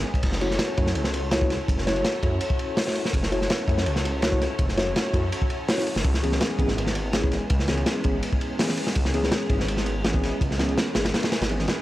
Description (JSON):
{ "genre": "drum and bass, jungle", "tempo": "165 BPM", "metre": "4/4", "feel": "straight", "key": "F# minor", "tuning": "A4 = 435 Hz", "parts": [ { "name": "soft string machine", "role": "sustained chords", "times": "0.0-11.8 s", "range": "G#3 to C#5", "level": "-31 LUFS", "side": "equal", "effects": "ensemble chorus" }, { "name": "detuned saw bass", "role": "bass", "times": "0.0-11.7 s", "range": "F#1 to F#2", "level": "-28 LUFS", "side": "equal", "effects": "none" }, { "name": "crunchy breakbeat drum kit", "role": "drums", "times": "0.1-11.8 s", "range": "crash cymbal, hi-hat, kick drum, ride cymbal, snare drum", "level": "-24 LUFS", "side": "equal", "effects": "none" }, { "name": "deep mellow chord stab", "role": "stabs", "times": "0.4-11.7 s", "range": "E3 to C#5", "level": "-29 LUFS", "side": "left 1 dB", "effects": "chorus, dub echo" } ], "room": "small room ambience", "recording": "dry, gritty hardware recording, vinyl crackle", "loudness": "-22 LUFS", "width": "side -16 dB against mid", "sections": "0.2-11.8 A section", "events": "drop 0.2-11.8", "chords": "0.2 F#m7; 6.0 C#m7", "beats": "| 0.23 0.59 0.95 1.32 | 1.68 2.04 2.41 2.77 | 3.14 3.50 3.86 4.23 | 4.59 4.95 5.32 5.68 | 6.04 6.41 6.77 7.14 | 7.50 7.86 8.23 8.59 | 8.95 9.32 9.68 10.04 | 10.41 10.77 11.14 11.50" }